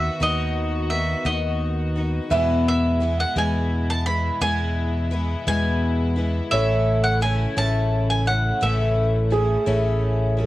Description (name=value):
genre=indie folk with a building arrangement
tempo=57 BPM (dotted quarters)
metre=6/8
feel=straight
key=E major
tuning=A4 = 440 Hz
part: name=mandolin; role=melody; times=0.0-10.3 s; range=D#5 to B5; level=-25 LUFS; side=right 2 dB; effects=none
part: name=felt-muted upright piano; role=second line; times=0.0-10.5 s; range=G#4 to E5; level=-25 LUFS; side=right 3 dB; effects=none
part: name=picked twelve-string acoustic guitar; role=accompaniment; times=0.0-10.5 s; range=E2 to F#4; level=-26 LUFS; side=left 3 dB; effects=none
part: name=warm studio string section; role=sustained chords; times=0.0-10.5 s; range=B2 to F#4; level=-34 LUFS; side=right 1 dB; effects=none
part: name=fingered electric bass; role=bass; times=0.0-10.5 s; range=A1 to E2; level=-23 LUFS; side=equal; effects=none
room=light reverb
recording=worn, warbling old tape, cassette tape, warbly pitch drift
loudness=-19 LUFS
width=side -16 dB against mid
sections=0.0-10.5 A section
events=none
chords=0.0 B/D#; 2.3 E; 6.5 A